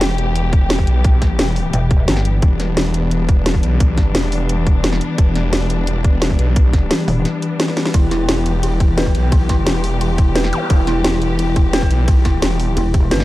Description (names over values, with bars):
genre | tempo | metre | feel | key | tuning
dark technical drum and bass | 174 BPM | 4/4 | straight | E minor | A4 = 440 Hz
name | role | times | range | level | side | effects
warm symphonic string section | sustained chords | 0.0-13.2 s | E3 to G4 | -22 LUFS | left 2 dB | sidechain pumping
snarling distorted saw bass | bass | 0.0-12.8 s | E1 to B1 | -18 LUFS | equal | distortion, overdrive, sidechain pumping
drum and bass drum kit | drums | 0.0-13.2 s | hi-hat, ride cymbal, snare drum | -21 LUFS | equal | none
electronic kick drum | drums | 0.5-13.0 s | none | -14 LUFS | equal | overdrive
pulsing pluck wobble bass | bass | 1.7-2.4, 7.1-7.3, 12.8-13.2 s | E1 to G1 | -16 LUFS | equal | chorus
dark detuned synth bell | arpeggios | 7.9-13.2 s | E4 to B4 | -23 LUFS | right 1 dB | chorus, phaser, sidechain pumping, dub echo
zap | sound effects | 10.5-10.6 s | none | -28 LUFS | equal | none
room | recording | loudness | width
light reverb | dark, warm production | -13 LUFS | side -16 dB against mid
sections
0.0-13.2 A section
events
break 7.3-7.9; drum fill 7.7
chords
0.0 Em